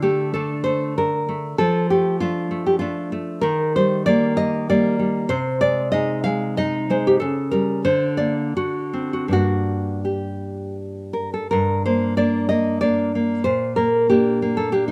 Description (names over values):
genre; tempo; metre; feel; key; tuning
romantic piece for solo classical guitar; 79-99 BPM; 3/4; rubato; G minor; A4 = 438 Hz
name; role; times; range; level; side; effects
nylon-string guitar; solo; 0.0-14.9 s; G2 to F5; -21 LUFS; equal; none
room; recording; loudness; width
little or no reverb; recorded outdoors, with no room sound; -21 LUFS; mono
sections
0.0-11.5 A section; 11.5-14.9 A section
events
none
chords
0.0 D5; 1.6 Dm/F; 3.4 Eb; 5.3 Ab/C; 7.2 A7b9/C#; 7.9 Bbadd9/D; 8.6 D7; 9.3 Gm; 13.4 Bb69